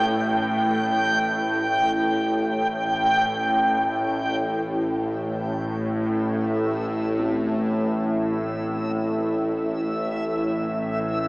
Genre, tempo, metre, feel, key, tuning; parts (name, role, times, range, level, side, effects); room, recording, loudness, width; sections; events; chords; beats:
dark ambient drone; free time; A minor; A4 = 440 Hz
bowed-like drone; drone; 0.0-11.3 s; A1 to A2; -24 LUFS; equal; built-in reverb, phaser
backwards swelling texture; texture; 0.0-11.3 s; E5 to G5; -25 LUFS; equal; built-in reverb, shimmer reverb
dark detuned synth bell; arpeggios; 7.2-11.3 s; C4; -38 LUFS; equal
wet cathedral reverb, RT60 5.3 s; small speaker sound; -21 LUFS; side -25 dB against mid
0.0-4.4 A section; 4.4-11.3 B section
fade-in on synth texture 4.4-11.3
0.0 N.C.; 4.4 Am
free time